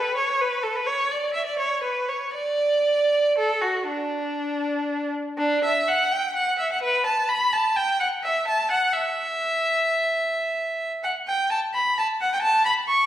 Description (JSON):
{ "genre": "classical, baroque-style suite movement for unaccompanied violin", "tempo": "75-88 BPM (dotted quarters)", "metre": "12/8", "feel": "rubato", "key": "D major", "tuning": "A4 = 440 Hz", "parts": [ { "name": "clear violin", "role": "solo", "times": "0.0-13.1 s", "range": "D4 to C#6", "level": "-21 LUFS", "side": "equal", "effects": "none" } ], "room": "wet recital hall reverb, RT60 1.4 s", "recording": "heard from further back in the room", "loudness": "-21 LUFS", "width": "side -12 dB against mid", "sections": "0.0-5.4 A section; 5.4-13.1 B section", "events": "none", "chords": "none" }